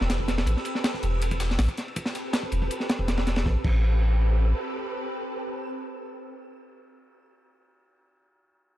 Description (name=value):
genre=drum and bass, jungle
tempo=161 BPM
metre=4/4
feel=straight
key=A minor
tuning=A4 = 443 Hz
part: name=soft string machine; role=sustained chords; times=0.0-7.2 s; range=C4 to B4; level=-33 LUFS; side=right 1 dB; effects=ensemble chorus
part: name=soft dub sub bass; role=bass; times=0.0-4.5 s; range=E1 to A1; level=-23 LUFS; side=equal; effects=tube saturation
part: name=crunchy breakbeat drum kit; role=drums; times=0.0-3.8 s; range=crash cymbal, kick drum, ride cymbal, snare drum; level=-29 LUFS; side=equal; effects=high-pass filter on kick, high-pass filter on cymbals, high-pass filter on snare, high-pass filter on room
part: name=backwards swelling texture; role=texture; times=0.0-3.5 s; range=E6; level=-45 LUFS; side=right 2 dB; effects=built-in reverb
part: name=breakbeat sampler-style drum kit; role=drums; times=0.1-3.4 s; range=hi-hat, snare drum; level=-38 LUFS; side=left 3 dB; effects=high-pass filter on hats, high-pass filter on snare, high-pass filter on room
room=little or no reverb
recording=dark, warm production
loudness=-24 LUFS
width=side -14 dB against mid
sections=0.0-3.5 A section; 3.5-6.4 B section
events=none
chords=0.0 Am9